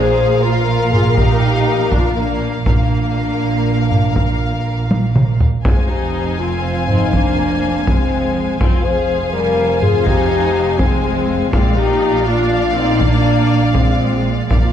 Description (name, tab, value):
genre	cinematic, epic orchestral film score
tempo	81 BPM (dotted quarters)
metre	12/8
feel	straight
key	unclear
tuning	A4 = 440 Hz
part	clear studio violin section	melody	0.0-14.7 s	F5 to Ab5	-26 LUFS	left 4 dB	none
part	dark symphonic violin section	second line	0.0-14.7 s	Bb4 to F5	-24 LUFS	left 2 dB	none
part	warm symphonic viola section	accompaniment	0.0-14.7 s	F3 to Ab4	-24 LUFS	left 1 dB	none
part	mellow French horn section	sustained chords	0.0-14.7 s	Bb3 to C5	-19 LUFS	left 4 dB	none
part	dark symphonic cello section	bass	0.0-14.7 s	F2 to Bb2	-22 LUFS	right 4 dB	none
part	warm symphonic double bass section	bass	0.0-14.7 s	F1 to Bb1	-21 LUFS	right 4 dB	none
part	solo taiko drums	drums	0.9-14.7 s	none	-17 LUFS	equal	none
room	moderate scoring stage reverb, RT60 1.6 s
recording	dark, warm production, nothing above 11.0 kHz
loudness	-13 LUFS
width	side -9 dB against mid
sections	0.0-14.7 A section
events	drum fill 4.9-5.7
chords	0.0 Bb; 5.7 Fm; 11.5 Bb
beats	0.45 1.18 1.92 | 2.66 3.41 4.16 4.91 | 5.65 6.39 7.13 7.87 | 8.61 9.34 10.07 10.80 | 11.54 12.27 13.01 13.75 | 14.51